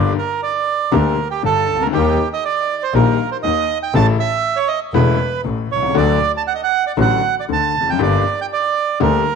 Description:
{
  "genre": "tango",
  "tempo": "119 BPM",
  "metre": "4/4",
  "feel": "rubato",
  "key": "G harmonic minor",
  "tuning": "A4 = 443 Hz",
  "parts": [
    { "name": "bandoneon", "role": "melody", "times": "0.0-9.4 s", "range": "G4 to A5", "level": "-18 LUFS", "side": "right 8 dB", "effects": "none" },
    { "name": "clear grand piano", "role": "accompaniment", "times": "0.0-9.2 s", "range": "E1 to G4", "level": "-20 LUFS", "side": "left 12 dB", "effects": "none" },
    { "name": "clear double bass", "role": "bass", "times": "0.0-9.2 s", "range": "E1 to Eb2", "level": "-19 LUFS", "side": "equal", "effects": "none" }
  ],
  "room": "moderate echo chamber reverb, RT60 1.9 s, small room ambience",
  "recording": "1960s-style stereo with parts hard left and right, nothing above 10.4 kHz",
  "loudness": "-15 LUFS",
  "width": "side -6 dB against mid",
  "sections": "0.0-9.4 A section",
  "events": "none",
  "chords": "0.0 Gm; 1.9 Eb; 3.9 A; 5.9 D; 8.0 Gm"
}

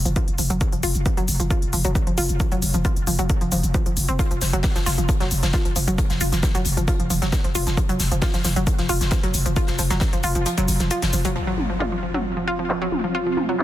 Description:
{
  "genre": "driving peak-time techno",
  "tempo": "134 BPM",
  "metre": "4/4",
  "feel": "straight",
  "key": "unclear",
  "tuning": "A4 = 441 Hz",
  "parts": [
    { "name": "growling 808-style bass", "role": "bass", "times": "0.0-11.4 s", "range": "F1", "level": "-24 LUFS", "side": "equal", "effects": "overdrive, sidechain pumping, low-pass filter" },
    { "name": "wide unison pluck", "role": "riff", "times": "0.1-13.5 s", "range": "F3 to F4", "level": "-25 LUFS", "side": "equal", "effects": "sidechain pumping, dub echo" },
    { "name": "techno drum kit", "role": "drums", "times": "0.1-13.6 s", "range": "handclaps, hi-hat, shaker, toms", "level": "-27 LUFS", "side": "left 1 dB", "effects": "low-pass filter on hats, low-pass filter on cymbals, low-pass filter on perc, low-pass filter on toms, low-pass filter on snare, low-pass filter on room" },
    { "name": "electronic kick drum", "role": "drums", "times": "0.2-10.1 s", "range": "none", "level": "-22 LUFS", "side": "equal", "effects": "none" },
    { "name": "huge arena drum kit", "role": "drums", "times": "4.2-11.3 s", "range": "hi-hat, snare drum", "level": "-32 LUFS", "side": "left 2 dB", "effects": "sidechain pumping on hats, high-pass filter on hats, high-pass filter on snare, high-pass filter on room" },
    { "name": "swarming drone", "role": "drone", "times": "12.2-13.6 s", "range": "F3 to F4", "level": "-31 LUFS", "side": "right 1 dB", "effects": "built-in reverb, sidechain pumping" },
    { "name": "impact", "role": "sound effects", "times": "11.4-13.1 s", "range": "none", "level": "-31 LUFS", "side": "equal", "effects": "none" },
    { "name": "granular cloud pad", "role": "texture", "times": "12.2-13.6 s", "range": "C4 to F5", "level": "-28 LUFS", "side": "right 2 dB", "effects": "built-in reverb, sidechain pumping" }
  ],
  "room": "little or no reverb",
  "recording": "dense, heavily limited modern master",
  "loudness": "-19 LUFS",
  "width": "side -13 dB against mid",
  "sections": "0.0-11.4 A section; 11.4-13.6 B section",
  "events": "kick drops out 10.5-11.4; impact 11.4-13.1",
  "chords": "0.0 F5"
}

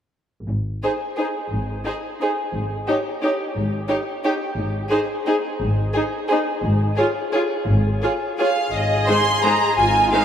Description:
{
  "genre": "classical, orchestral ballroom waltz",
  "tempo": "174 BPM",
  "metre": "3/4",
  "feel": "uneven beats, rubato",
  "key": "Ab major",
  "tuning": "A4 = 439 Hz",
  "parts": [
    { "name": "warm chamber cello section", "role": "bass", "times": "0.5-10.2 s", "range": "Ab2 to Ab4", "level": "-25 LUFS", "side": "equal", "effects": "none" },
    { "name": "warm studio double bass section", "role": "bass", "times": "0.5-10.1 s", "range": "Ab1", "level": "-24 LUFS", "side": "equal", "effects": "none" },
    { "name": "rich studio violin section", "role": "melody", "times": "0.8-10.2 s", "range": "C5 to C6", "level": "-23 LUFS", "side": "right 1 dB", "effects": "none" },
    { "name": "rich chamber violin section", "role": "second line", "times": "0.8-10.2 s", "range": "G4 to C5", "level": "-24 LUFS", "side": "equal", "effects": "none" },
    { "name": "rich chamber viola section", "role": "accompaniment", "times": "0.8-10.2 s", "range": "Ab3 to F4", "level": "-26 LUFS", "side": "left 1 dB", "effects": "none" }
  ],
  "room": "wet cathedral reverb, RT60 5.1 s",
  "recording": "in a vast, echoing space",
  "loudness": "-19 LUFS",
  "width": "side -9 dB against mid",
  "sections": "0.5-8.7 A section; 8.7-10.2 B section",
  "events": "none",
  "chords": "0.5 Ab5; 6.6 Db/Ab (rootless); 8.7 Ab"
}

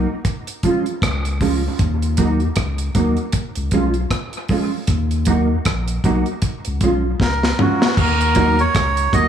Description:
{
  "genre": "dub reggae",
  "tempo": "78 BPM",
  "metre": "4/4",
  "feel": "swing 58% on 16ths",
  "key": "Eb minor",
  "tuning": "A4 = 440 Hz",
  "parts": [
    { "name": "mellow electric guitar", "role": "accompaniment", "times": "0.0-9.3 s", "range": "F3 to Gb4", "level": "-21 LUFS", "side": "right 3 dB", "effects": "ensemble chorus, dub echo" },
    { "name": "warm sub bass", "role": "bass", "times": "0.0-9.3 s", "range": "Bb1 to Eb2", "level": "-20 LUFS", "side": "left 1 dB", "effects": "none" },
    { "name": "deep reggae drum kit", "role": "drums", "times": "0.2-9.3 s", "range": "crash cymbal, hi-hat, kick drum, rim click, snare drum, toms", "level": "-21 LUFS", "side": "equal", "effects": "none" },
    { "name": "melodica", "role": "melody", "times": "7.2-9.3 s", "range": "Gb4 to Eb5", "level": "-18 LUFS", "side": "right 2 dB", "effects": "dub echo" },
    { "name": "bongos", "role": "percussion", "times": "8.4-8.6 s", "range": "none", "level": "-28 LUFS", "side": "right 4 dB", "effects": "none" }
  ],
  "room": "light reverb, studio reverb",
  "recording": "studio ambience",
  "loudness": "-16 LUFS",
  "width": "side -8 dB against mid",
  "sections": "0.0-8.0 A section; 8.0-9.3 B section",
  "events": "drum fill 7.2-8.0",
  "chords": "0.2 Db; 1.8 Ebm; 3.3 Db; 4.9 Ebm; 6.4 Db; 8.0 Ebm"
}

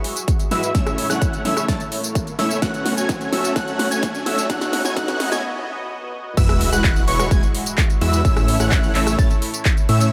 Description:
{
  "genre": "EDM, festival progressive house",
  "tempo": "128 BPM",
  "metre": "4/4",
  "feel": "straight",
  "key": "E major",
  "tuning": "A4 = 438 Hz",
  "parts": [
    { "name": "lush unison pad", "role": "sustained chords", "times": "0.0-10.1 s", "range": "F#3 to E5", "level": "-33 LUFS", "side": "equal", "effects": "chorus, phaser, sidechain pumping" },
    { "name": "pop drum kit", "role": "drums", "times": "0.0-10.1 s", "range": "crash cymbal, handclaps, hi-hat, rim click, snare drum, tambourine", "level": "-27 LUFS", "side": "equal", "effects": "overdrive" },
    { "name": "riser and sub drop", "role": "sound effects", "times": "0.3-8.2 s", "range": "none", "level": "-33 LUFS", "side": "equal", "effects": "none" },
    { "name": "electronic kick drum", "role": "drums", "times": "0.3-9.7 s", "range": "none", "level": "-21 LUFS", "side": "equal", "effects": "none" },
    { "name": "plucky unison lead", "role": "arpeggios", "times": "0.5-10.1 s", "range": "C#6 to A6", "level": "-29 LUFS", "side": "equal", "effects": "sidechain pumping, digital delay" },
    { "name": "dense compressed supersaw", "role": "riff", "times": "0.5-10.1 s", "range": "G#3 to A5", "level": "-26 LUFS", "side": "equal", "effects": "sidechain pumping, low-pass filter, digital delay" },
    { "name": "detuned saw bass", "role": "bass", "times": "6.4-10.1 s", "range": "E1 to A2", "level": "-24 LUFS", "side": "equal", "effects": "chorus, sidechain pumping" }
  ],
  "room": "light reverb",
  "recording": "high-pass filter",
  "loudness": "-20 LUFS",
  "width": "mono",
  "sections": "0.0-6.4 A section; 6.4-10.1 B section",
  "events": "build-up 0.0-6.4; drum fill 0.0-5.4; filter sweep on supersaw synth 0.0-6.4; break 5.4-6.4; drop 6.4-10.1; impact 6.4-8.2",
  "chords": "0.0 Eadd9; 0.7 A; 2.6 F#m; 4.5 B; 6.4 Eadd9; 8.2 A"
}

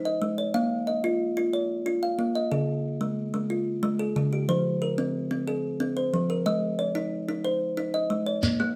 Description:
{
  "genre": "southern african traditional, mbira-style interlocking cycle",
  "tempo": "122 BPM (dotted quarters)",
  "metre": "12/8",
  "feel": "straight",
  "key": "unclear",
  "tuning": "A4 = 441 Hz",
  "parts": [
    { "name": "kalimba", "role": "arpeggios", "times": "0.0-8.8 s", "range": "Db3+43c to F5", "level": "-27 LUFS", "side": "equal", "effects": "none" },
    { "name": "shekere", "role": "percussion", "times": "8.4-8.6 s", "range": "none", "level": "-30 LUFS", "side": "equal", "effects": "none" },
    { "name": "kalimba", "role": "arpeggios", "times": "8.6-8.8 s", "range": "Bb3", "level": "-29 LUFS", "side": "equal", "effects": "none" }
  ],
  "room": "wet studio reverb, RT60 0.6 s",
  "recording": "none",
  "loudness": "-27 LUFS",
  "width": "mono",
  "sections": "0.0-8.4 A section",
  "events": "none",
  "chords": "0.0 Ab5; 0.5 Bbm; 2.5 Db; 4.5 Fm; 6.5 Ab"
}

